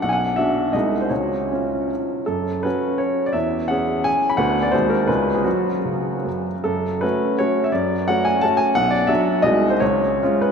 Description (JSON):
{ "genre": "classical, romantic triple-time dance for piano with dotted rhythms", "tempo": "142-189 BPM", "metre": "3/4", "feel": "rubato", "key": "F# minor", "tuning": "A4 = 437 Hz", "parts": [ { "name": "clear baby grand piano", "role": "solo", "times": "0.0-10.5 s", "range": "B1 to B5", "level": "-18 LUFS", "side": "equal", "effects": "none" } ], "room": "wet cathedral reverb, RT60 5.2 s", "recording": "in a vast, echoing space", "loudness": "-18 LUFS", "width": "side -6 dB against mid", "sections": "0.0-6.7 A section; 6.7-10.5 A section", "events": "none", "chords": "0.0 Bm; 0.7 G#7/B#; 1.1 C#; 2.3 F#m; 3.4 C#m/E; 4.4 Bm/D; 4.7 G#7/D#; 5.1 C#7; 5.5 F#5; 6.7 F#m; 8.8 Bm; 9.5 G#7/B#; 9.8 C#" }